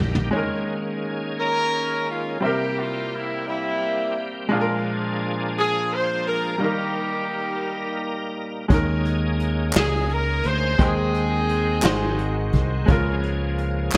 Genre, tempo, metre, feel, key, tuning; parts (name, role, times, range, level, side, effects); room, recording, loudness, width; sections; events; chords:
slow gospel; 57 BPM (dotted quarters); 6/8; straight; A4 = 440 Hz
bright baby grand piano; accompaniment; 0.0-14.0 s; Ab2 to G5; -30 LUFS; equal
bright tonewheel organ; sustained chords; 0.0-14.0 s; Eb3 to G5; -32 LUFS; equal; slow rotary speaker, overdrive, chorus vibrato
fingered electric bass; bass; 0.0-0.3, 8.7-14.0 s; Ab1 to Eb2; -26 LUFS; equal
vintage brush drum kit; drums; 0.1-0.3, 8.7-14.0 s; hi-hat, kick drum, snare drum, toms; -24 LUFS; equal; gated reverb
warm horn section; melody; 1.4-14.0 s; G3 to C5; -27 LUFS; equal
group handclap; percussion; 9.7-14.0 s; -29 LUFS; equal
light reverb, studio reverb; bright 1980s-style digital production; -23 LUFS; mono
0.3-14.0 A section
drum fill 0.0-0.3
0.3 Eb7sus4; 2.4 C7; 4.5 Bb7; 6.6 Eb; 8.7 Eb7sus4; 10.8 Abmaj7/Eb; 11.8 Ab7; 12.9 Db6